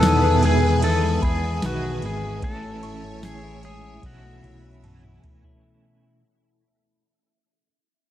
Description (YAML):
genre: dream pop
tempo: 75 BPM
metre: 4/4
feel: straight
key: E major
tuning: A4 = 439 Hz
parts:
  - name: pedal steel guitar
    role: melody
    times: 0.0-5.2 s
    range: F#4 to A4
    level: -26 LUFS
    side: left 2 dB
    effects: tape echo, shimmer reverb
  - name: electric guitar at the edge of break-up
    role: accompaniment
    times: 0.0-6.1 s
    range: E2 to G#4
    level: -29 LUFS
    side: right 6 dB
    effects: tremolo, ensemble chorus
  - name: string machine, violas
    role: sustained chords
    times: 0.0-5.6 s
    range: B4 to E6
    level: -30 LUFS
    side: equal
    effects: ensemble chorus, shimmer reverb
  - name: mellow electric guitar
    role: arpeggios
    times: 0.0-6.2 s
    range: E2 to G#4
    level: -28 LUFS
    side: left 3 dB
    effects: wide subtle chorus, tape echo
  - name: fat analog bass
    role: bass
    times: 0.0-5.2 s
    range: G#1 to E2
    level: -25 LUFS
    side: equal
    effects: none
  - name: soft vintage rhythm box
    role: drums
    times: 0.0-5.6 s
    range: kick drum, ride cymbal, snare drum, tambourine, toms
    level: -26 LUFS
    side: equal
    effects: overdrive
  - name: soft synth bell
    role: texture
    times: 0.0-6.0 s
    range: A5 to F#6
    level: -40 LUFS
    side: right 1 dB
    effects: none
room: light reverb, digital ambience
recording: dark, warm production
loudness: -19 LUFS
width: side -12 dB against mid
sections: 0.0-5.6 A section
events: fade-out 0.0-5.6; drum fill 4.0-5.6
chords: 0.0 Emaj7; 2.4 Amaj7; 4.0 B9sus4